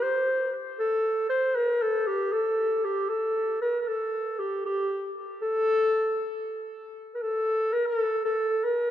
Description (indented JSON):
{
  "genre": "persian",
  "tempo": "78 BPM (dotted quarters)",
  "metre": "6/8",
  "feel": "straight",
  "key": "unclear",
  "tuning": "A4 = 440 Hz",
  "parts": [
    { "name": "dark clarinet", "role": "solo", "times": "0.0-8.9 s", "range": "G4 to C5", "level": "-25 LUFS", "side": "equal", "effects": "tape echo" }
  ],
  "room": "wet lush hall reverb, RT60 2.3 s",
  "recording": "dreamy mix soaked in reverb",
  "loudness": "-24 LUFS",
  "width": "side -11 dB against mid",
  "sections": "0.0-7.0 A section; 7.0-8.9 B section",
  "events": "none",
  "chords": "none"
}